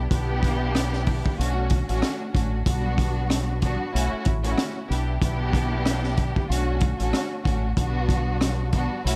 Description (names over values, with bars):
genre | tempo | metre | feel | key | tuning
hip hop, boom-bap hip-hop | 94 BPM | 4/4 | swing 57% on 16ths | unclear | A4 = 440 Hz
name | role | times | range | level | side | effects
warm studio string section | accompaniment | 0.0-9.2 s | G3 to G4 | -30 LUFS | equal | cassette tape, high-pass filter, low-pass filter
deep dub fingered electric bass | bass | 0.0-9.2 s | A1 to B1 | -28 LUFS | equal | none
crunchy breakbeat drum kit | drums | 0.1-9.2 s | hi-hat, kick drum, rim click, snare drum | -28 LUFS | equal | none
room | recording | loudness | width
studio reverb | none | -24 LUFS | mono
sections
0.0-9.2 A section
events
none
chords
0.0 G6/B; 1.4 Bm9; 2.7 Gmaj7/B; 3.9 A69; 4.9 G6/B; 6.5 Bm9; 7.8 Gmaj7/B